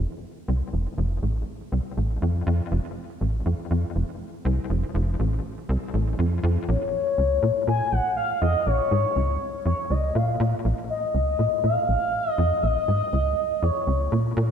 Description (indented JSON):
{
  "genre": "ambient, sequencer-driven space music",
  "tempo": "121 BPM",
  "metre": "4/4",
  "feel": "straight",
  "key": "Bb minor",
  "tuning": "A4 = 440 Hz",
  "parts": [
    { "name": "tight sequencer bass", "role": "riff", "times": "0.0-14.5 s", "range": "F1 to Bb2", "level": "-24 LUFS", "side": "equal", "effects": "ensemble chorus, vintage 12-bit sampler grit, ping-pong delay" },
    { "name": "expressive synth lead", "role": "melody", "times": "6.7-14.4 s", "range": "Db5 to Ab5", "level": "-24 LUFS", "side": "left 2 dB", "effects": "lush chorus, ping-pong delay" }
  ],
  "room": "moderate plate reverb, RT60 2.7 s",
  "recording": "dark, warm production",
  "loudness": "-22 LUFS",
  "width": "side -8 dB against mid",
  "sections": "0.0-14.5 A section",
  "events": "none",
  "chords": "0.0 F; 6.7 Bbm",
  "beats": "0.24 | 0.73 1.23 1.72 2.22 | 2.71 3.21 3.71 4.20 | 4.70 5.20 5.69 6.19 | 6.68 7.18 7.67 8.17 | 8.67 9.16 9.66 10.15 | 10.65 11.14 11.64 12.14 | 12.63 13.13 13.62 14.12"
}